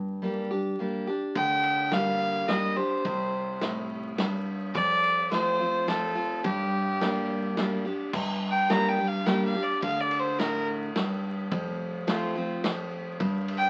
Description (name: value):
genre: honky-tonk and classic country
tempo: 106 BPM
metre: 3/4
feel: straight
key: G minor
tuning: A4 = 435 Hz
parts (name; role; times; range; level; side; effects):
- picked steel-string acoustic guitar; accompaniment; 0.0-13.7 s; F2 to G4; -32 LUFS; equal; none
- upright bass; bass; 0.0-13.7 s; F1 to G2; -45 LUFS; equal; none
- clear fiddle; melody; 1.4-10.7, 13.6-13.7 s; G4 to Bb5; -29 LUFS; equal; none
- vintage drum kit; drums; 1.4-13.6 s; crash cymbal, kick drum, ride cymbal, snare drum; -36 LUFS; equal; none
room: moderate studio reverb, RT60 0.6 s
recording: very old 78 rpm record, vinyl crackle, nothing above 10.5 kHz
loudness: -28 LUFS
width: mono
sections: 0.0-8.1 A section; 8.1-13.7 B section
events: fiddle solo 8.1-13.7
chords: 0.0 Gm; 3.1 C5; 4.7 F; 6.4 Gm; 11.5 F